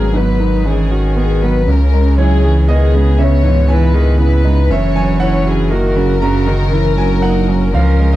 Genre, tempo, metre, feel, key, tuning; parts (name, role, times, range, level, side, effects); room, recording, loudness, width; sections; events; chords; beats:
neoclassical piano and strings; 118 BPM; 3/4; rubato; A4 = 440 Hz
warm chamber violin section; melody; 0.0-8.2 s; G#4 to C#5; -20 LUFS; left 6 dB
rich cello; second line; 0.0-8.2 s; C#3 to F#3; -19 LUFS; right 5 dB
clear concert grand piano; accompaniment; 0.0-8.2 s; C#2 to A#5; -19 LUFS; right 2 dB
dark viola; accompaniment; 0.0-8.2 s; B3 to F#4; -22 LUFS; right 3 dB
sub bass with octave; bass; 0.0-8.2 s; F#1 to C#2; -13 LUFS; equal
little or no reverb; dry, close 1970s-style studio recording; -11 LUFS; side -15 dB against mid
0.0-8.2 A section
0.0 G#m7; 1.7 C#m7; 4.7 F#7
| 0.14 0.65 1.16 | 1.67 2.18 2.68 | 3.18 3.68 4.18 | 4.70 5.21 5.71 | 6.22 6.73 7.23 | 7.74